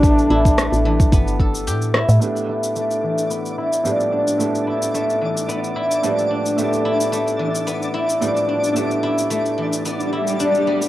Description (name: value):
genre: organic downtempo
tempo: 110 BPM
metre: 4/4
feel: swing 54% on 16ths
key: unclear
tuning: A4 = 440 Hz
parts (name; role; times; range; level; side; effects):
- mellow duduk; melody; 0.0-1.7 s; D4; -20 LUFS; equal; tape echo, plate reverb
- felt-muted upright piano; accompaniment; 0.0-10.9 s; A2 to G4; -26 LUFS; right 5 dB; sidechain pumping, cassette tape, tape echo
- guzheng; arpeggios; 0.0-10.9 s; E3 to A4; -20 LUFS; left 1 dB; low-pass filter, cassette tape, tape echo, plate reverb
- woody FM bass; bass; 0.0-2.2 s; G1 to A2; -18 LUFS; equal; tube saturation
- electronic cabasa and rim click; drums; 0.0-10.9 s; none; -26 LUFS; left 1 dB; none
- electronic kick drum; drums; 0.0-1.5 s; none; -16 LUFS; equal; none
- twinkling granular texture; texture; 2.5-10.9 s; D4 to D5; -29 LUFS; equal; built-in reverb, cassette tape, plate reverb
- swell; sound effects; 10.0-10.9 s; none; -24 LUFS; right 2 dB; none
room: moderate studio reverb, RT60 0.5 s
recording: home recording on cassette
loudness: -17 LUFS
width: side -14 dB against mid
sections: 0.0-2.2 A section; 2.2-10.9 B section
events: band accent 1.9; filter sweep on guzheng 2.2-10.9; swell 10.0-10.9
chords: 0.0 Em7; 2.2 G9/A